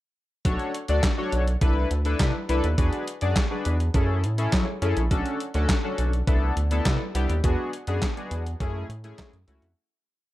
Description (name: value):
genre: early-eighties boogie funk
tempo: 103 BPM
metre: 4/4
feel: straight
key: B dorian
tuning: A4 = 440 Hz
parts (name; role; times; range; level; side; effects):
- chorused polysynth; accompaniment; 0.4-9.7 s; A3 to D5; -28 LUFS; left 2 dB; none
- rubbery square bass; bass; 0.5-9.7 s; A#1 to F#3; -24 LUFS; equal; none
- clean 12-bit digital drum machine; drums; 0.5-9.8 s; handclaps, hi-hat, kick drum, snare drum; -25 LUFS; equal; none
room: digital ambience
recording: dark, warm production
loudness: -22 LUFS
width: side -16 dB against mid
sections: 0.4-9.8 breakdown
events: fade-out 7.4-9.8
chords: 0.4 Bm9; 1.6 Cmaj13; 2.8 E9; 3.9 F#m7; 5.1 Bm9; 6.3 Cmaj13; 7.4 E9; 8.6 F#m7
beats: | 0.45 1.03 1.61 2.20 | 2.78 3.36 3.94 4.53 | 5.11 5.69 6.28 6.86 | 7.44 8.02 8.61 9.19